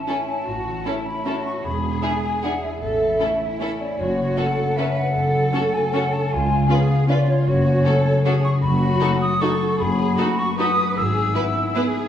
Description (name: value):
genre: classical, orchestral ballroom waltz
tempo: 154 BPM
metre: 3/4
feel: uneven beats, rubato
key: A major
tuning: A4 = 440 Hz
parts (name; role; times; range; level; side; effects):
- hollow concert flute; second line; 0.0-11.9 s; C#5 to E6; -24 LUFS; left 1 dB; none
- concert harp; arpeggios; 0.0-12.1 s; E2 to D#5; -23 LUFS; left 2 dB; none
- warm symphonic cello section; bass; 0.0-12.1 s; E4 to B4; -26 LUFS; right 2 dB; none
- clear symphonic violin section; melody; 0.1-11.8 s; G#4 to B4; -33 LUFS; left 2 dB; none
- warm symphonic violin section; second line; 0.1-11.8 s; E4 to F#4; -32 LUFS; left 1 dB; none
- warm symphonic viola section; accompaniment; 0.1-11.8 s; B3 to D#4; -30 LUFS; right 2 dB; none
- warm studio double bass section; bass; 0.5-11.3 s; E1 to C#2; -26 LUFS; right 2 dB; none
room: wet recital hall reverb, RT60 1.7 s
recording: small room ambience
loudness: -18 LUFS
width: side -10 dB against mid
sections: 0.0-12.1 A section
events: none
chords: 0.0 A; 1.6 E7; 2.8 A; 4.0 F#m; 6.3 C#7; 7.5 F#m; 8.6 B7/F#; 11.0 E/G#